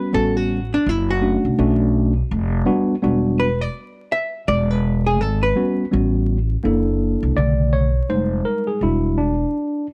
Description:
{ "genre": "hip hop, jazz-hop", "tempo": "83 BPM", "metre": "4/4", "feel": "swing 60% on 16ths", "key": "unclear", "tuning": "A4 = 440 Hz", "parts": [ { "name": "archtop guitar, miked and amplified", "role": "melody", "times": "0.0-6.1 s", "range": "D4 to E5", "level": "-24 LUFS", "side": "equal", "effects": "plate reverb" }, { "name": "tine electric piano", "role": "accompaniment", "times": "0.0-9.9 s", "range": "C#3 to D5", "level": "-22 LUFS", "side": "equal", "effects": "plate reverb" }, { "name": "upright bass", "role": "bass", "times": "0.1-9.4 s", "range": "E1 to C2", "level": "-22 LUFS", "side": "equal", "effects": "none" } ], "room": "moderate studio ambience, RT60 0.5 s", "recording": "dark, warm production, vinyl crackle", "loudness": "-19 LUFS", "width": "mono", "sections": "0.0-7.4 A section; 7.4-9.9 A section", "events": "hollow-body jazz guitar solo 0.0-7.4; tine electric piano solo 7.4-9.9", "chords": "0.1 A13; 0.9 F#m; 1.6 Bm7; 2.3 Fsus2; 3.0 Em9; 4.5 E; 5.9 A13; 6.6 F#7alt; 7.4 Bm7; 8.1 Fm9; 8.8 Em9", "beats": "0.14 0.86 | 1.59 2.31 3.03 3.75 | 4.48 5.20 5.92 6.65 | 7.37 8.09 8.81 9.54" }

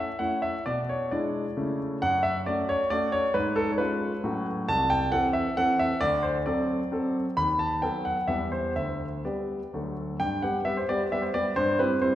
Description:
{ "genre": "classical-period piano sonatina", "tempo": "133 BPM", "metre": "3/4", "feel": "rubato", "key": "G major from 4.7 s", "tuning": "A4 = 443 Hz", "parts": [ { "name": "clear concert grand piano", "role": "solo", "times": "0.0-12.2 s", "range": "C2 to B5", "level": "-24 LUFS", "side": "equal", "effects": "none" } ], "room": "wet recital hall reverb, RT60 1.8 s", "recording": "heard from further back in the room", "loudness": "-25 LUFS", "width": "side -12 dB against mid", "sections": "0.0-10.2 A section; 10.2-12.2 B section", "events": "none", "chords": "0.0 A; 0.7 E7/B; 1.6 A/C#; 2.0 F#m; 3.3 C#7/G#; 4.2 F#m/A; 4.7 Am/C; 6.0 D7; 7.4 B7/D#; 8.3 Em; 8.8 G/D; 9.7 D; 10.2 G; 11.6 C/G", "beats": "0.19 | 0.65 1.11 1.56 | 2.01 2.46 2.90 | 3.35 3.79 4.24 | 4.68 5.12 5.57 | 6.01 6.46 6.92 | 7.37 7.82 8.28 | 8.76 9.24 9.71 | 10.19 10.64 11.10 | 11.55 12.00" }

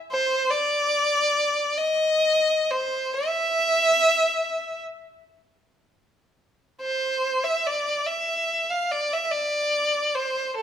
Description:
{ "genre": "classical, free, expressive piece for unaccompanied violin", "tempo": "23-51 BPM (dotted quarters)", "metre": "6/8", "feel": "rubato", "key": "unclear", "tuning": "A4 = 440 Hz", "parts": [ { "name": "clear violin", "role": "solo", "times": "0.1-10.6 s", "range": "A4 to F5", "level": "-21 LUFS", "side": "equal", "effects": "none" } ], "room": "light reverb", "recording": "close, detailed microphones", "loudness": "-21 LUFS", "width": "side -9 dB against mid", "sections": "0.0-6.8 A section; 6.8-10.6 B section", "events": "none", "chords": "none", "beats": "| 0.49 1.79 | 3.27 4.81 | 6.79 8.07 | 9.32 10.55" }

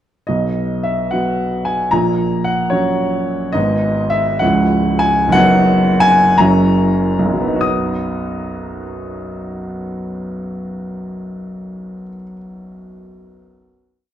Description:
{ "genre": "classical, romantic character piece for solo piano", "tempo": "46-75 BPM (dotted quarters)", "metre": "6/8", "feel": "rubato", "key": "B major", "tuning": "A4 = 440 Hz", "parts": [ { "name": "warm baby grand piano", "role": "solo", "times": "0.3-14.1 s", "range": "C#1 to D#6", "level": "-15 LUFS", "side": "equal", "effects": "none" } ], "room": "wet recital hall reverb, RT60 1.5 s", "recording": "dark, warm production", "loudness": "-13 LUFS", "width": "side -11 dB against mid", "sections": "0.3-7.6 A section; 7.6-12.5 final chord", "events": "slowing down 2.7-7.6", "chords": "0.3 B; 1.9 F#/A#; 3.6 G#m; 4.4 C#m; 5.3 B/F#; 6.4 F#7; 7.6 B", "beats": "| 0.28 1.11 | 1.93 2.73 | 3.55 4.41 | 5.34 6.38 | 7.62 8.85 | 10.07 11.30" }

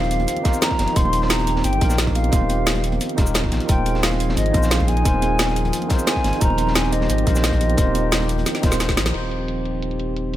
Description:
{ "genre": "liquid drum and bass", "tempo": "176 BPM", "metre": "4/4", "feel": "straight", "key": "Eb major", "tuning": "A4 = 439 Hz", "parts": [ { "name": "mellow hollow jazz flute", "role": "melody", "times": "0.0-8.8 s", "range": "Eb5 to C6", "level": "-25 LUFS", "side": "left 1 dB", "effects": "tape echo" }, { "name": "tine electric piano", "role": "accompaniment", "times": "0.0-10.4 s", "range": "Eb3 to C5", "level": "-26 LUFS", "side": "right 1 dB", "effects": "medium stereo tremolo, tape echo" }, { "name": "warm analog pad", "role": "sustained chords", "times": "0.0-10.4 s", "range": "F3 to Ab4", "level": "-28 LUFS", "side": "equal", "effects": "chorus, sidechain pumping" }, { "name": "saturated sub bass", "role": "bass", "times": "0.0-10.4 s", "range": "Eb1 to Bb1", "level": "-22 LUFS", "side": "equal", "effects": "tube saturation" }, { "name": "crunchy breakbeat drum kit", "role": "drums", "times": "0.0-9.1 s", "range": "hi-hat, snare drum", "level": "-32 LUFS", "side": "equal", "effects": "high-pass filter on hats, high-pass filter on snare, high-pass filter on room" }, { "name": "drum and bass drum kit", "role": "drums", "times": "0.1-10.4 s", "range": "cabasa, crash cymbal, hi-hat, snare drum", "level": "-24 LUFS", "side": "equal", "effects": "low-pass filter on hats, low-pass filter on perc, low-pass filter on snare, low-pass filter on cymbals, low-pass filter on room" }, { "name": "congas", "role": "percussion", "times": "0.2-9.1 s", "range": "none", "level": "-30 LUFS", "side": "right 2 dB", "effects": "none" }, { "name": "electronic kick drum", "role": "drums", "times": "0.5-9.0 s", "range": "none", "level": "-20 LUFS", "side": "equal", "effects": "none" } ], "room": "light reverb, studio reverb", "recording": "none", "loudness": "-17 LUFS", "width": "side -13 dB against mid", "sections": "0.0-9.1 A section; 9.1-10.4 B section", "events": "drop 0.0-9.1; drum fill 8.5-9.1; band accent 9.1", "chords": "0.0 Eb69; 3.7 Ab6/Eb; 9.1 Eb69", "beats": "0.28 0.62 | 0.96 1.30 1.65 1.99 | 2.33 2.67 3.01 3.35 | 3.69 4.03 4.37 4.71 | 5.05 5.39 5.74 6.08 | 6.42 6.76 7.10 7.44 | 7.78 8.12 8.46 8.80 | 9.14 9.49 9.83 10.17" }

